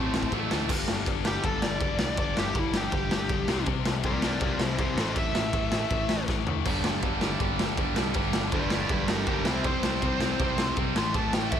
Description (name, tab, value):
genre	punk rock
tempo	161 BPM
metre	4/4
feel	straight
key	unclear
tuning	A4 = 437 Hz
part	bluesy overdriven lead guitar	melody	0.0-6.3, 8.5-11.6 s	C4 to C6	-31 LUFS	right 1 dB	distortion
part	cranked stack guitar	riff	0.0-11.6 s	G2 to C4	-31 LUFS	left 13 dB	overdrive
part	tight distorted guitar	riff	0.0-0.7, 6.7-11.6 s	G2 to C4	-32 LUFS	right 17 dB	distortion
part	picked electric bass	bass	0.0-11.6 s	G1 to D2	-34 LUFS	right 1 dB	none
part	raw garage drum kit	drums	0.1-11.6 s	crash cymbal, kick drum, ride cymbal, snare drum, toms	-28 LUFS	equal	none
room	light reverb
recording	none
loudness	-24 LUFS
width	side -9 dB against mid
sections	0.7-11.6 A section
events	lead electric guitar solo 0.7-11.6; drum fill 6.3-6.7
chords	0.0 Am; 0.7 G5; 3.5 C; 5.0 A5; 6.7 G5; 9.5 C5; 11.0 A5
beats	0.32 | 0.69 1.06 1.44 1.81 | 2.18 2.55 2.93 3.30 | 3.67 4.05 4.42 4.79 | 5.17 5.54 5.91 6.29 | 6.66 7.03 7.41 7.78 | 8.16 8.53 8.90 9.28 | 9.65 10.03 10.40 10.77 | 11.15 11.52